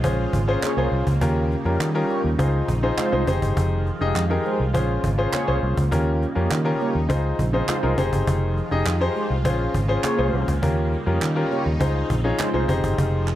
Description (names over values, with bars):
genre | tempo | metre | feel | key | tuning
early-eighties boogie funk | 102 BPM | 4/4 | straight | F minor | A4 = 440 Hz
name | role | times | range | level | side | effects
clear grand piano | accompaniment | 0.0-13.3 s | Db4 to Eb5 | -24 LUFS | left 2 dB | none
lush unison pad | sustained chords | 0.0-13.4 s | Db3 to F4 | -30 LUFS | right 1 dB | chorus, phaser
fingered electric bass | bass | 0.0-13.3 s | F1 to Eb3 | -23 LUFS | equal | none
cajon | drums | 0.0-13.4 s | none | -27 LUFS | equal | none
mellow synth brass | second line | 0.6-12.6 s | Ab3 to Db5 | -28 LUFS | right 1 dB | chorus
group handclap | percussion | 0.6-13.4 s | none | -32 LUFS | right 6 dB | none
room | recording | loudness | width
light reverb, small room ambience | dark, warm production | -19 LUFS | side -13 dB against mid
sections
0.0-13.4 A section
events
none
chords
0.0 Bbm7; 1.2 Eb7; 2.4 Dbmaj9; 3.3 Fm9; 4.7 Bbm7; 5.9 Eb7; 7.1 Dbmaj9; 8.0 Fm9; 9.4 Bbm7; 10.6 Eb7; 11.8 Dbmaj9; 12.7 Fm9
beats
0.04 0.63 | 1.22 1.80 2.39 2.98 | 3.57 4.16 4.75 5.33 | 5.92 6.51 7.10 7.69 | 8.27 8.86 9.45 10.04 | 10.63 11.21 11.80 12.39 | 12.98